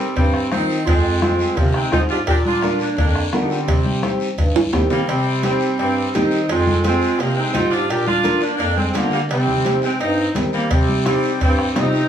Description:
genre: latin, cumbia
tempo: 171 BPM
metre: 4/4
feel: straight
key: C minor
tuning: A4 = 440 Hz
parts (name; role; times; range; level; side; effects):
- clear saxophone section; melody; 0.0-12.1 s; F3 to G4; -21 LUFS; left 1 dB; none
- breathy clarinet; second line; 0.0-12.1 s; Bb3 to Bb4; -24 LUFS; right 5 dB; none
- nylon-string guitar; accompaniment; 0.0-12.0 s; C4 to Bb4; -24 LUFS; left 1 dB; none
- warm bass clarinet; bass; 0.2-12.0 s; F2 to Eb3; -22 LUFS; right 1 dB; none
- bombo; percussion; 0.2-4.9, 10.7-11.9 s; none; -20 LUFS; equal; none
- congas; percussion; 0.2-11.9 s; none; -27 LUFS; left 2 dB; none
- cowbell and timbales; percussion; 0.2-11.9 s; none; -25 LUFS; right 6 dB; none
- guiro; percussion; 0.2-12.1 s; none; -33 LUFS; left 4 dB; none
room: moderate studio reverb, RT60 0.8 s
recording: small room ambience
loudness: -16 LUFS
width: side -9 dB against mid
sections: 0.0-5.1 A section; 5.1-12.1 A section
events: drum fill 4.6-5.1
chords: 0.0 Cm; 0.9 Fm; 2.3 Bb; 3.7 Cm; 6.5 Fm; 7.9 Bb; 9.3 Cm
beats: 0.17 0.52 | 0.87 1.22 1.57 1.92 | 2.27 2.62 2.98 3.33 | 3.68 4.03 4.38 4.73 | 5.08 5.44 5.79 6.14 | 6.49 6.84 7.19 7.54 | 7.89 8.25 8.60 8.95 | 9.30 9.65 10.00 10.36 | 10.71 11.06 11.41 11.76

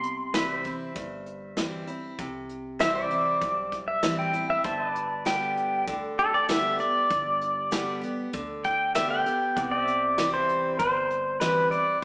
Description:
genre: honky-tonk and classic country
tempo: 98 BPM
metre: 4/4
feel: straight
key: C major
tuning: A4 = 440 Hz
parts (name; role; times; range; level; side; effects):
- pedal steel guitar; melody; 0.0-12.0 s; A4 to C6; -24 LUFS; equal; none
- picked steel-string acoustic guitar; accompaniment; 0.0-12.0 s; G2 to G4; -33 LUFS; equal; none
- upright bass; bass; 0.0-11.7 s; G1 to D2; -44 LUFS; equal; none
- vintage brush drum kit; drums; 0.0-11.9 s; hi-hat, kick drum, snare drum; -31 LUFS; equal; none
- pedal steel guitar; sustained chords; 0.3-12.0 s; C4 to E5; -36 LUFS; equal; none
room: wet stone room reverb, RT60 1.3 s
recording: band playing live in one room, small speaker sound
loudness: -24 LUFS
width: side -27 dB against mid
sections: 0.0-2.2 A section; 2.2-12.0 B section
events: pedal steel guitar solo 2.2-12.0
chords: 0.0 C; 4.6 G; 9.6 C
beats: 0.35 0.96 1.57 | 2.19 2.81 3.42 4.03 | 4.65 5.26 5.88 6.49 | 7.11 7.72 8.34 8.95 | 9.56 10.18 10.79 11.41 | 12.02

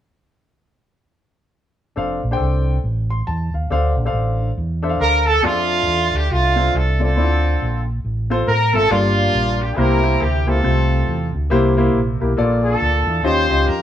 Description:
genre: uptempo gospel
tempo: 138 BPM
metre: 4/4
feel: swing 61% on 8ths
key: F major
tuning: A4 = 440 Hz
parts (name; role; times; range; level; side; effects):
- warm grand piano; accompaniment; 2.0-13.8 s; G2 to C6; -20 LUFS; left 2 dB; none
- fingered electric bass; bass; 2.0-13.8 s; F1 to A2; -19 LUFS; equal; none
- warm horn section; melody; 5.0-13.8 s; A3 to C5; -18 LUFS; right 1 dB; none
room: moderate studio reverb, RT60 0.7 s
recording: band playing live in one room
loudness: -16 LUFS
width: side -10 dB against mid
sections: 2.0-5.4 A section; 5.4-13.8 B section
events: grand piano fill 4.8-5.4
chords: 2.0 F6; 3.7 Dm7; 5.4 F6; 7.2 Dm7; 8.9 Gm7; 9.8 C7; 10.6 F/C; 11.5 C7; 12.4 Bbmaj7; 13.2 Eb9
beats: | 1.98 2.41 2.84 3.28 | 3.71 4.14 4.58 5.01 | 5.44 5.88 6.31 6.74 | 7.17 7.61 8.04 8.47 | 8.91 9.34 9.77 10.21 | 10.64 11.07 11.51 11.94 | 12.37 12.81 13.24 13.67

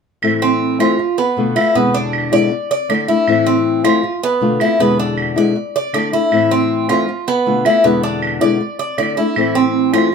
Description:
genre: latin, Cuban son and guajira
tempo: 158 BPM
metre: 4/4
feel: straight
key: A harmonic minor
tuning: A4 = 440 Hz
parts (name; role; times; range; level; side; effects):
- nylon-string guitar; accompaniment; 0.2-10.1 s; E2 to F4; -16 LUFS; left 4 dB; none
- claves; percussion; 0.2-10.1 s; none; -23 LUFS; right 5 dB; none
- Cuban tres; arpeggios; 0.4-10.1 s; B3 to D5; -16 LUFS; right 2 dB; none
room: moderate studio reverb, RT60 0.7 s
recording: minimal, uncompressed stereo recording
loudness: -13 LUFS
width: side -6 dB against mid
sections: 0.2-10.1 A section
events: none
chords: 0.2 Am; 1.0 Bm7b5; 1.8 E7; 2.5 Dsus2; 3.3 Am; 4.0 Bm7b5; 4.8 E7; 5.6 Dsus2; 6.3 Am; 7.1 Bm7b5; 7.8 E7; 8.6 Dsus2; 9.4 Am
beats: | 0.23 0.61 0.99 1.37 | 1.75 2.13 2.51 2.90 | 3.27 3.66 4.04 4.42 | 4.80 5.18 5.56 5.94 | 6.32 6.70 7.08 7.46 | 7.84 8.22 8.60 8.98 | 9.36 9.74 10.12

